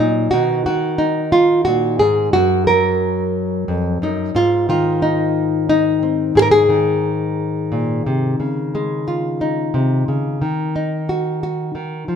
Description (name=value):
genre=folk, solo fingerstyle acoustic guitar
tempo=89 BPM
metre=3/4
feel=straight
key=Db major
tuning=A4 = 441 Hz
part: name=nylon-string guitar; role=solo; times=0.0-12.2 s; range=F2 to Bb4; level=-15 LUFS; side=equal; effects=none
room=moderate stone room reverb, RT60 1.2 s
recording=band playing live in one room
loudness=-15 LUFS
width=side -7 dB against mid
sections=0.0-8.4 A section; 8.4-12.2 B section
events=none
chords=0.3 Cb; 2.3 Gb; 4.4 Ab; 8.4 Dbadd9; 10.4 Ebm